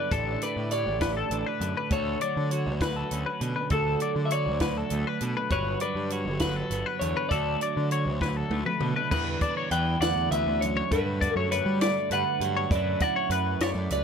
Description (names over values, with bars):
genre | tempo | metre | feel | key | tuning
math rock and midwest emo | 67 BPM (dotted quarters) | 6/8 | straight | D major | A4 = 439 Hz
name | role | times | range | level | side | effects
electric guitar through a small old amp | melody | 0.0-14.0 s | A4 to G5 | -30 LUFS | equal | none
twelve-string electric guitar | accompaniment | 0.0-14.0 s | D2 to G4 | -34 LUFS | right 7 dB | none
twelve-string electric guitar | arpeggios | 0.0-14.0 s | A4 to D5 | -31 LUFS | left 7 dB | vibrato effect, analog delay
fuzz picked electric bass | bass | 0.1-14.0 s | G1 to G3 | -30 LUFS | equal | overdrive
compact cocktail drum kit | drums | 0.1-14.0 s | crash cymbal, hi-hat, kick drum, snare drum, toms | -31 LUFS | equal | none
room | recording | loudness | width
little or no reverb | none | -25 LUFS | side -6 dB against mid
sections
0.0-9.1 A section; 9.1-14.0 B section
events
drum fill 8.2-9.1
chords
0.1 A7sus4; 1.9 Dmaj7; 5.5 Gmaj7; 7.3 D; 9.1 Em7; 10.9 Gmaj9; 12.7 Dmaj9/F#